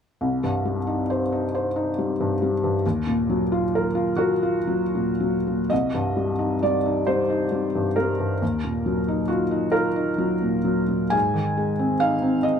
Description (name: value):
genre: neoclassical minimalist piano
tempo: 37-47 BPM (dotted quarters)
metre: 6/8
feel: rubato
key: C minor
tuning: A4 = 437 Hz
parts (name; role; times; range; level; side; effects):
- felt-muted upright piano; solo; 0.2-12.6 s; C2 to Ab5; -21 LUFS; equal; none
room: moderate small room reverb, RT60 0.5 s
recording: none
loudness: -21 LUFS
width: side -7 dB against mid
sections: 0.2-5.7 A section; 5.7-12.6 B section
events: none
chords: 0.2 Cm; 2.8 Ebmadd9; 5.7 Cm; 8.4 Ebmadd9; 11.1 Ab